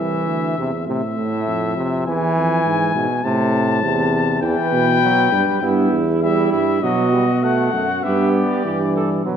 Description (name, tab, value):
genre	classical, imitative canzona for brass ensemble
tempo	100 BPM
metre	4/4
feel	straight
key	unclear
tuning	A4 = 440 Hz
part	warm cornet	melody	0.0-9.2 s	D5 to A5	-22 LUFS	left 8 dB	none
part	clear trombone	accompaniment	0.0-9.4 s	A2 to B3	-21 LUFS	right 2 dB	none
part	warm tuba	bass	0.0-9.4 s	C2 to B2	-20 LUFS	right 2 dB	none
part	mellow flugelhorn	second line	4.4-9.4 s	E4 to B4	-24 LUFS	right 5 dB	none
room	wet scoring stage reverb, RT60 1.8 s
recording	dark, warm production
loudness	-16 LUFS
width	side -8 dB against mid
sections	0.0-9.2 A section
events	none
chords	0.0 Am/C (rootless); 0.9 Am; 2.1 E; 3.2 Am; 4.4 Em; 6.8 B; 8.0 Em/G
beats	0.27 0.87 1.47 | 2.07 2.66 3.25 3.83 | 4.42 5.02 5.62 6.22 | 6.82 7.43 8.03 8.64 | 9.25